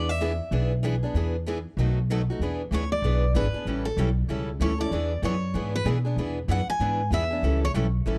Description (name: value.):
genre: acoustic string swing (jazz manouche).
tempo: 191 BPM.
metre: 4/4.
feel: swing 60% on 8ths.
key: E mixolydian.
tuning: A4 = 440 Hz.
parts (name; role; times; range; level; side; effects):
picked steel-string acoustic guitar; melody; 0.0-0.7, 2.7-7.7 s; A4 to G#5; -32 LUFS; equal; none.
picked steel-string acoustic guitar; accompaniment; 0.0-8.2 s; B2 to A4; -34 LUFS; equal; none.
picked steel-string acoustic guitar; accompaniment; 0.0-8.2 s; B2 to B4; -37 LUFS; equal; none.
upright bass; bass; 0.0-8.2 s; G#1 to B2; -28 LUFS; equal; none.
room: studio reverb.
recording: dry, close 1970s-style studio recording.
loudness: -26 LUFS.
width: mono.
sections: 0.0-2.4 A section; 2.4-8.2 B section.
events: steel-string acoustic guitar solo 2.4-8.2.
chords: 0.0 E7; 1.8 B7; 2.4 E7; 3.7 A7; 4.9 E7; 7.4 A7.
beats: 0.20 0.52 0.83 | 1.14 1.46 1.77 2.09 | 2.40 2.71 3.03 3.34 | 3.66 3.97 4.29 4.60 | 4.91 5.23 5.54 5.86 | 6.17 6.49 6.80 7.11 | 7.43 7.74 8.06.